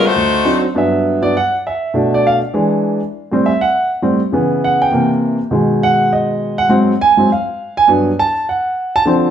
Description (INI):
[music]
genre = jazz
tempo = 202 BPM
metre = 4/4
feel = swing 60% on 8ths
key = unclear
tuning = A4 = 440 Hz
[part]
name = bright saxophone section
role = melody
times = 0.0-0.6 s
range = A3 to C5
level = -14 LUFS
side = left 4 dB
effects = none
[part]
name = warm grand piano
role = accompaniment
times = 0.0-9.3 s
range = D2 to A5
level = -12 LUFS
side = right 1 dB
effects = none
[sound]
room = wet large studio reverb, RT60 1.0 s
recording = band playing live in one room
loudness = -12 LUFS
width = side -9 dB against mid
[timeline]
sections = 0.7-9.3 A section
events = grand piano solo 0.7-9.3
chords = 0.1 D7b9; 0.7 Gmaj7; 1.9 Bm7b5; 2.5 E7; 3.1 Am7; 4.3 C#m7; 4.9 C7; 5.5 B6; 6.7 Ab6; 7.9 Gmaj9